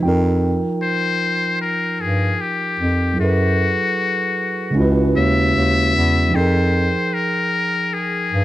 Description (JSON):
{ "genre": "hip hop", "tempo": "76 BPM", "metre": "4/4", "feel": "swing 57% on 16ths", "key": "unclear", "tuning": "A4 = 441 Hz", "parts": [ { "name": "mellow tine electric piano", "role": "accompaniment", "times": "0.0-8.4 s", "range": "Db3 to G5", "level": "-20 LUFS", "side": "right 2 dB", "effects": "low-pass filter" }, { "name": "mellow bass clarinet", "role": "bass", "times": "0.0-8.4 s", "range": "Db2 to G2", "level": "-18 LUFS", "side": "equal", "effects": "none" }, { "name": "trumpet with metal mute", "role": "melody", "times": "0.8-8.4 s", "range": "Gb4 to Fb5", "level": "-20 LUFS", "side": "left 3 dB", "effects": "low-pass filter, analog delay" } ], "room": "light reverb, small room ambience", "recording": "none", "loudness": "-16 LUFS", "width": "side -15 dB against mid", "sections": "0.0-8.4 A section", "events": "none", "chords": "0.0 F9sus4; 3.2 Gbm11; 4.8 Dbm11; 6.3 Fm11" }